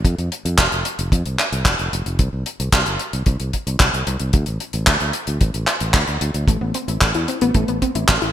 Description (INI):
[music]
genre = italo disco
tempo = 112 BPM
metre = 4/4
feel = straight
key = A minor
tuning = A4 = 437 Hz
[part]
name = fingered electric bass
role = bass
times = 0.0-8.3 s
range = F1 to F2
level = -23 LUFS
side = equal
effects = tube saturation
[part]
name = kick drum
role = drums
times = 0.0-8.2 s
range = none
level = -17 LUFS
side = equal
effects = none
[part]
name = damped 70s drum kit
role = drums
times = 0.1-8.3 s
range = handclaps, hi-hat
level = -20 LUFS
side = equal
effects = gated reverb
[part]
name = analog pluck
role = arpeggios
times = 6.5-8.3 s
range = A3 to A4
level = -22 LUFS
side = left 2 dB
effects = chorus, ping-pong delay
[sound]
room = light reverb, small room ambience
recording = bright 1980s-style digital production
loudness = -17 LUFS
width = side -11 dB against mid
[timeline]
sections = 0.0-8.3 A section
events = none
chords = 0.1 F5; 2.2 C5; 4.3 D5; 6.5 Amadd9